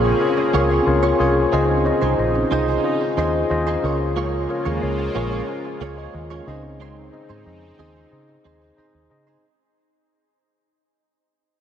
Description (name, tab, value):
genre	pop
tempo	91 BPM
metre	4/4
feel	straight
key	unclear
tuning	A4 = 440 Hz
part	mellow tine electric piano	accompaniment	0.0-9.5 s	Db3 to Ab5	-21 LUFS	left 3 dB	none
part	sweeping resonant pad	sustained chords	0.0-9.4 s	Ab3 to Ab4	-26 LUFS	right 2 dB	chorus
part	direct-recorded clean electric guitar	riff	0.0-9.4 s	Bb3 to Db5	-28 LUFS	right 7 dB	ensemble chorus, diffuse ambient delay
part	vintage muted fingered electric bass	bass	0.0-9.4 s	Bb1 to Db3	-24 LUFS	right 1 dB	none
room	wet huge ambient reverb, RT60 8.7 s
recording	dreamy mix soaked in reverb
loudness	-18 LUFS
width	side -9 dB against mid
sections	0.0-9.4 A section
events	fade-out 0.0-9.4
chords	0.0 Bbm7; 1.5 Fm7; 6.5 Ab/Db